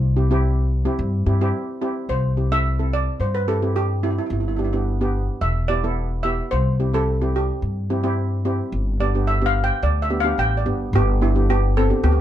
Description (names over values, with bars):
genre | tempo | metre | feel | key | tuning
calypso | 109 BPM | 4/4 | straight | C major | A4 = 440 Hz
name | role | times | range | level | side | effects
steel pan | melody | 0.0-12.2 s | G3 to G5 | -24 LUFS | right 2 dB | plate reverb
upright bass | bass | 0.0-12.2 s | E1 to G2 | -20 LUFS | left 1 dB | none
steel pan | accompaniment | 0.2-12.1 s | B3 to A4 | -26 LUFS | right 1 dB | none
room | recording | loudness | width
light reverb | dark, warm production | -19 LUFS | side -11 dB against mid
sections
0.0-2.1 A section; 2.1-10.9 B section; 10.9-12.2 A section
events
steel pan solo 2.1-10.9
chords
0.0 C; 4.3 G; 5.4 Em; 6.5 C; 8.7 G